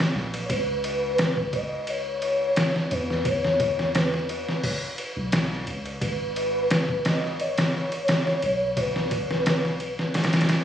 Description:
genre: trip hop.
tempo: 87 BPM.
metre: 4/4.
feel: swing 54% on 16ths.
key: unclear.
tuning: A4 = 440 Hz.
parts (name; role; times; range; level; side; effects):
trip hop sampler-style drum kit; drums; 0.0-10.6 s; hi-hat, kick drum, ride cymbal, snare drum; -25 LUFS; equal; small room ambience.
soft 808-style bass; bass; 0.2-10.0 s; G#1 to E2; -35 LUFS; equal; none.
pure breathy sine lead; melody; 0.4-10.2 s; B4 to D#5; -27 LUFS; left 1 dB; lush chorus, dub echo.
room: light reverb, digital ambience.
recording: recorded on a phone in the room, studio reverb, vinyl crackle.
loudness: -22 LUFS.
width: side -10 dB against mid.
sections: 0.0-10.6 A section.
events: none.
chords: 0.5 C#m7; 6.0 G#m.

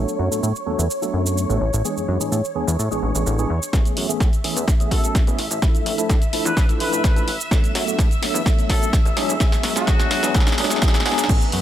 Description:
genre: filtered disco house.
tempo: 127 BPM.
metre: 4/4.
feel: straight.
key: unclear.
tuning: A4 = 439 Hz.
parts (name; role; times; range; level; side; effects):
tine electric piano; accompaniment; 0.0-11.6 s; E3 to A4; -25 LUFS; equal; overdrive, medium stereo tremolo, phaser, sidechain pumping, low-pass filter.
phased string machine; sustained chords; 0.0-11.6 s; B4 to E6; -29 LUFS; equal; ensemble chorus, phaser, sidechain pumping, low-pass filter.
plucky analog bass; bass; 0.0-11.6 s; E1 to A2; -25 LUFS; equal; sidechain pumping, high-pass filter, low-pass filter.
punchy analog drum machine; drums; 0.1-11.6 s; crash cymbal, hi-hat, shaker, snare drum; -25 LUFS; right 1 dB; high-pass filter on snare, sidechain pumping on hats, high-pass filter on hats, sidechain pumping on perc, high-pass filter on perc, sidechain pumping on cymbals, high-pass filter on cymbals.
electronic kick drum; drums; 3.7-11.4 s; none; -18 LUFS; equal; none.
warm horn section; melody; 4.9-10.4 s; F#4 to B4; -28 LUFS; left 2 dB; sidechain pumping, low-pass filter, dub echo.
room: light reverb.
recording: none.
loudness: -17 LUFS.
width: side -11 dB against mid.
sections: 0.0-3.7 A section; 3.7-11.3 B section.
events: filter sweep 0.0-3.7, 3.7-11.3; build-up 3.7-11.3; drum fill 3.7-11.3.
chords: 0.0 Bm7; 1.6 E7/A; 3.7 Amaj9; 5.6 Dmadd9/A; 7.3 Bm7/A; 9.2 E7/A.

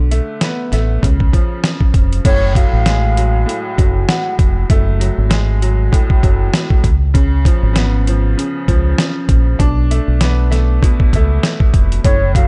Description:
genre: hip hop, boom-bap hip-hop.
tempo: 98 BPM.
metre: 4/4.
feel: swing 57% on 16ths.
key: F# harmonic minor.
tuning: A4 = 439 Hz.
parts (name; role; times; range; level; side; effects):
bright upright piano; accompaniment; 0.0-12.5 s; A2 to D4; -24 LUFS; equal; cassette tape, high-pass filter, low-pass filter.
deep dub fingered electric bass; bass; 0.0-12.4 s; E#1 to C#2; -17 LUFS; equal; none.
dusty soul sampler-style drum kit; drums; 0.1-12.5 s; crash cymbal, hi-hat, kick drum, snare drum; -16 LUFS; equal; none.
breathy mellow concert flute; melody; 2.3-4.4, 12.0-12.5 s; C#5 to F#5; -22 LUFS; equal; high-pass filter, low-pass filter, delay.
room: little or no reverb.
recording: dark, warm production, nothing above 10.4 kHz.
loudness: -14 LUFS.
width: mono.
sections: 0.0-2.2 A section; 2.2-12.5 B section.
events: none.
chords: 0.0 Bm7; 1.0 C#; 2.2 F#madd9; 6.8 C#7; 9.6 Bm7.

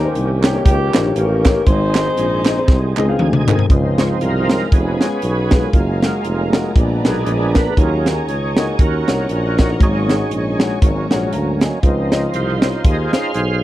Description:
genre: uptempo gospel.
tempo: 118 BPM.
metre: 4/4.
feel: swing 57% on 8ths.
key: Db major.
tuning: A4 = 439 Hz.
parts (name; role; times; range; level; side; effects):
warm saxophone section; melody; 0.0-3.2 s; Bb3 to C5; -21 LUFS; left 1 dB; none.
warm upright piano; accompaniment; 0.0-13.3 s; Ab2 to Bb5; -23 LUFS; left 4 dB; none.
overdriven tonewheel organ; sustained chords; 0.0-13.6 s; Eb3 to Ab5; -22 LUFS; right 3 dB; slow rotary speaker, chorus vibrato.
mellow tuba; bass; 0.0-13.6 s; F1 to Eb2; -19 LUFS; equal; none.
crisp fusion drum kit; drums; 0.2-13.5 s; hi-hat, kick drum, snare drum, toms; -15 LUFS; equal; none.
group handclap; percussion; 0.4-3.6 s; none; -27 LUFS; right 10 dB; none.
warm studio string section; sustained chords; 3.7-13.6 s; Ab4 to Db6; -32 LUFS; equal; none.
room: small room ambience.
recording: dry, close 1970s-style studio recording.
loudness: -14 LUFS.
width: side -15 dB against mid.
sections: 0.0-3.7 A section; 3.7-13.6 B section.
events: drum fill 2.7-3.7; tonewheel organ fill 2.7-3.7; tonewheel organ solo 3.7-13.6.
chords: 0.0 Eb7; 1.7 Ab; 3.7 Dbmaj7; 4.7 Db7/F; 5.7 Gbmaj9; 6.8 Bb7b9; 7.8 Ebm7; 9.8 Ab7sus4; 10.8 Ab9sus4; 11.8 Dbmaj9.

